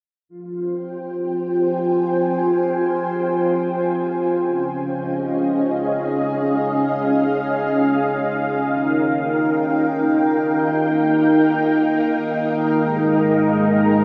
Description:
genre	ambient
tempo	free time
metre	none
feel	none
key	F minor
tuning	A4 = 441 Hz
part	string machine, full ensemble	sustained chords	0.3-14.0 s	Ab3 to Ab5	-20 LUFS	equal	ensemble chorus
room	wet huge ambient reverb, RT60 7.8 s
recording	none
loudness	-20 LUFS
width	mono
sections	0.3-14.0 A section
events	filter sweep on string machine 0.3-14.0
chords	0.3 Fm; 4.5 Db; 8.6 Eb; 12.8 Ab

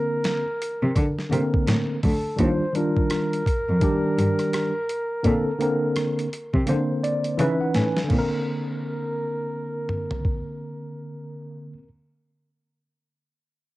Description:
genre	hip hop, jazz-hop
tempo	84 BPM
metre	4/4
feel	swing 61% on 16ths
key	Bb major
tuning	A4 = 440 Hz
part	breathy flugelhorn	melody	0.0-11.7 s	A4 to C5	-29 LUFS	equal	none
part	mellow tine electric piano	accompaniment	0.0-11.9 s	D3 to Ab5	-25 LUFS	equal	overdrive, medium stereo tremolo, cassette tape
part	boom bap sampler-style drum kit	drums	0.2-10.4 s	crash cymbal, hi-hat, kick drum, rim click, snare drum, toms	-26 LUFS	equal	none
part	muted cello	bass	0.8-8.2 s	D2 to D3	-24 LUFS	equal	none
room	light reverb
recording	home recording on cassette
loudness	-21 LUFS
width	side -18 dB against mid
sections	0.0-2.4 A section; 2.4-8.1 B section; 8.1-11.0 C section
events	drum fill 6.7-8.1; tine electric piano fill 6.7-8.1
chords	0.0 Bbadd9; 2.4 Ebmaj9; 5.2 Bbadd9; 7.4 Dbm9; 8.1 Bbadd9

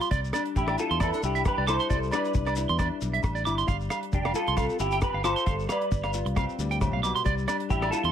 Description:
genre	highlife guitar band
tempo	134 BPM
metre	4/4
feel	swing 55% on 16ths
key	unclear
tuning	A4 = 440 Hz
part	nylon-string guitar	accompaniment	0.0-8.1 s	G2 to F4	-34 LUFS	left 8 dB	none
part	electric guitar at the edge of break-up	arpeggios	0.0-8.1 s	D5 to D6	-30 LUFS	right 7 dB	harmonic tremolo, slapback echo
part	damped 70s drum kit	drums	0.0-8.1 s	hi-hat, kick drum, rim click	-30 LUFS	equal	none
part	shekere	percussion	0.0-8.0 s	none	-38 LUFS	left 3 dB	none
part	fingered electric bass	bass	0.1-8.1 s	F1 to E2	-30 LUFS	equal	none
part	agogo bells	percussion	0.3-7.9 s	none	-36 LUFS	equal	none
part	semi-hollow electric guitar	melody	0.6-8.1 s	D4 to D5	-30 LUFS	equal	ensemble chorus, slapback echo
room	light reverb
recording	none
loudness	-24 LUFS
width	side -9 dB against mid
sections	0.0-8.1 A section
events	none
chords	0.1 Cadd9; 3.7 G7sus4; 7.2 Cadd9

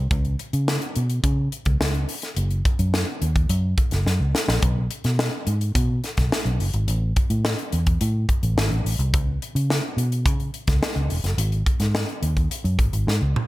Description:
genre	polished 1980s jazz-funk pop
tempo	107 BPM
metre	4/4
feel	straight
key	C# minor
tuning	A4 = 440 Hz
part	vintage muted fingered electric bass	bass	0.0-13.3 s	E1 to C#3	-22 LUFS	equal	none
part	crisp fusion drum kit	drums	0.1-13.5 s	hi-hat, kick drum, snare drum, toms	-23 LUFS	equal	gated reverb
room	little or no reverb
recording	none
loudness	-20 LUFS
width	side -18 dB against mid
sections	0.0-13.5 A section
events	drum fill 4.1-4.6, 13.1-13.5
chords	none

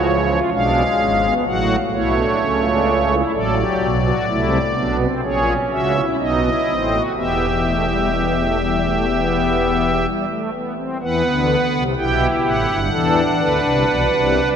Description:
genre	classical, baroque-style 4-part fugue for pipe organ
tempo	63 BPM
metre	4/4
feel	straight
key	E minor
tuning	A4 = 440 Hz
part	pipe organ, strings celeste	solo	0.0-14.6 s	E1 to G5	-16 LUFS	equal	none
room	wet cathedral reverb, RT60 4.8 s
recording	none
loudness	-16 LUFS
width	side -7 dB against mid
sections	0.0-11.0 A section; 11.0-14.6 B section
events	none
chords	0.0 C#7; 1.5 F#m/A; 3.3 F#dim/A; 5.2 F#7/A#; 6.2 B7; 7.2 Em; 12.9 F#m7b5

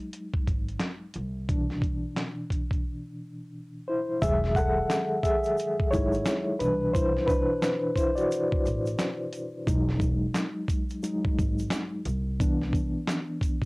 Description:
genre	lo-fi hip hop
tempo	88 BPM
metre	4/4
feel	swing 60% on 16ths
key	E major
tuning	A4 = 439 Hz
part	reed electric piano	accompaniment	0.0-13.7 s	B2 to F#5	-28 LUFS	left 1 dB	fast tremolo, cassette tape, low-pass filter, plate reverb
part	dusty soul sampler-style drum kit	drums	0.1-13.7 s	handclaps, hi-hat, kick drum, snare drum	-28 LUFS	equal	vintage 12-bit sampler grit, cassette tape
part	upright bass	bass	0.3-12.9 s	E1 to C2	-32 LUFS	equal	tube saturation
part	tube shaker	percussion	4.2-13.6 s	none	-52 LUFS	right 4 dB	none
room	light reverb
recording	home recording on cassette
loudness	-25 LUFS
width	side -25 dB against mid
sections	0.0-4.2 A section; 4.2-13.7 B section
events	reed electric piano solo 0.0-4.2, 4.2-13.7; filter sweep on reed electric piano 0.0-4.2; break 2.9-4.2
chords	0.0 Emaj9 (rootless); 1.1 Cmaj9; 4.2 Emaj9; 6.6 Cmaj9; 9.7 Emaj9; 12.1 Cmaj9

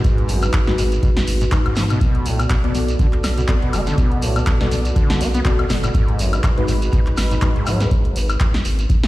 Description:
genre	acid house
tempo	122 BPM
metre	4/4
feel	swing 56% on 16ths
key	unclear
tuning	A4 = 441 Hz
part	dark analog pad	sustained chords	0.0-9.1 s	G#3 to D5	-27 LUFS	right 2 dB	chorus, sidechain pumping
part	overdriven acid bass	riff	0.0-7.9 s	G#1 to B3	-24 LUFS	equal	distortion, analog chorus, sidechain pumping, tape echo
part	electronic kick drum	drums	0.0-9.0 s	none	-18 LUFS	equal	none
part	punchy analog drum machine	drums	0.0-9.1 s	handclaps, hi-hat, snare drum, woodblock	-26 LUFS	left 1 dB	overdrive
part	shekere	percussion	0.0-9.0 s	none	-33 LUFS	right 3 dB	none
part	round analog bass	bass	0.3-8.9 s	F#1 to G#2	-20 LUFS	equal	sidechain pumping
part	deep mellow chord stab	stabs	0.7-7.6 s	G#3 to D5	-29 LUFS	left 4 dB	chorus, tape echo
room	light reverb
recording	played on a big sound system in a bare room, large studio reverb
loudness	-16 LUFS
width	side -17 dB against mid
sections	0.0-9.1 A section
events	none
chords	0.0 G#m7; 2.0 Bm7; 5.9 G#m7

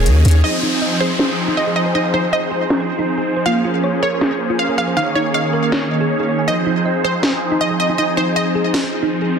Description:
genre	future bass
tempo	159 BPM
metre	4/4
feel	half-time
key	F minor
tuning	A4 = 440 Hz
part	supersaw chords	riff	0.0-9.4 s	Eb3 to Eb5	-18 LUFS	right 1 dB	phaser, lush chorus, low-pass filter, digital delay
part	trap drum kit	drums	0.1-8.8 s	hi-hat, snare drum	-20 LUFS	equal	low-pass filter on hats, low-pass filter on snare
part	thumb-piano-like synth pluck	arpeggios	0.2-9.3 s	Eb4 to Ab5	-24 LUFS	right 1 dB	chorus, digital delay
part	wide unison pluck	melody	0.4-8.6 s	C5 to F5	-21 LUFS	right 1 dB	digital delay
part	downlifter	sound effects	0.4-3.5 s	none	-25 LUFS	equal	none
room	moderate lush hall reverb, RT60 1.6 s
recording	dense, heavily limited modern master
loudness	-15 LUFS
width	side -6 dB against mid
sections	0.4-9.4 A section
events	filter sweep on drum 0.4-9.4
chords	0.4 Fm7; 3.5 Bbm9; 5.0 Eb7sus4; 6.5 Fm7

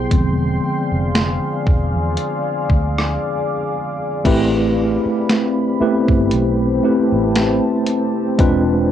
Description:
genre	contemporary R&B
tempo	58 BPM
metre	4/4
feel	swing 54% on 16ths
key	A minor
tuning	A4 = 440 Hz
part	mellow tine electric piano	accompaniment	0.0-8.9 s	D3 to C5	-18 LUFS	equal	medium stereo tremolo, cassette tape, plate reverb
part	deep dark ambient pad	sustained chords	0.0-8.9 s	C4 to D6	-23 LUFS	left 3 dB	chorus, built-in reverb, sidechain pumping, cassette tape, plate reverb
part	vintage muted fingered electric bass	bass	0.0-8.9 s	E1 to E2	-21 LUFS	equal	none
part	crisp 8-bit digital drum machine	drums	0.1-8.6 s	crash cymbal, hi-hat, kick drum, rim click, snare drum	-18 LUFS	equal	cassette tape
room	moderate small room reverb, RT60 0.5 s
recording	home recording on cassette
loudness	-15 LUFS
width	side -10 dB against mid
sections	0.0-4.3 A section; 4.3-8.9 B section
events	tine electric piano solo 0.0-4.3; break 3.2-4.3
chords	0.1 E7b9b13; 4.3 Am9; 8.4 E7b9b13

